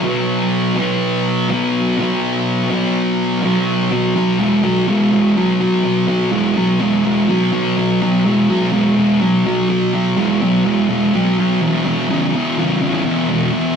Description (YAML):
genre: rock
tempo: 124 BPM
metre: 4/4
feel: straight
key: unclear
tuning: A4 = 436 Hz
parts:
  - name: thick fuzz guitar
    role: solo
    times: 0.0-13.7 s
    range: E2 to B3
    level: -14 LUFS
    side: equal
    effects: distortion
room: wet stone room reverb, RT60 1.4 s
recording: rough rehearsal-room recording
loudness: -14 LUFS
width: side -7 dB against mid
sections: 0.0-3.9 A section; 3.9-13.8 B section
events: none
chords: 0.0 B5; 11.6 E5